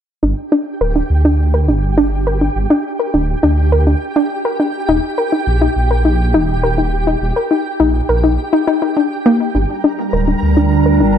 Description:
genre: IDM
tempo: 103 BPM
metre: 4/4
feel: straight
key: unclear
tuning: A4 = 442 Hz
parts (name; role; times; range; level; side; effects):
- soft round pluck; arpeggios; 0.2-11.1 s; Bb3 to Bb4; -15 LUFS; left 1 dB; chorus, tape echo
- dark detuned saw bass; bass; 0.2-11.2 s; D1 to D2; -15 LUFS; equal; none
- flickering grainy texture; texture; 0.7-11.2 s; G4 to Bb5; -23 LUFS; right 1 dB; built-in reverb
- warbly tape-like pad; sustained chords; 10.0-11.2 s; G3 to G5; -16 LUFS; right 3 dB; chorus, built-in reverb, vintage 12-bit sampler grit
room: light reverb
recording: none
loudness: -13 LUFS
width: side -9 dB against mid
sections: 0.2-9.5 A section; 9.5-11.2 B section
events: filter sweep on synth arpeggio sound 0.2-9.5, 9.5-11.2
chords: 0.2 Gm; 4.9 Eb; 9.5 Gm7

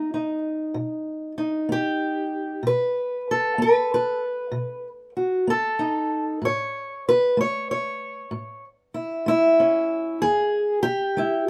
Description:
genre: acoustic country blues, solo or duo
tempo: 64 BPM (dotted quarters)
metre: 12/8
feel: straight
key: unclear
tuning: A4 = 439 Hz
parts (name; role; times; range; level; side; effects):
- fingerpicked steel-string acoustic guitar; solo; 0.0-11.5 s; E2 to D#5; -24 LUFS; equal; none
room: light reverb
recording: none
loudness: -24 LUFS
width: mono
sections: 0.0-11.5 A section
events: none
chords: 0.0 B; 6.4 A; 10.2 E

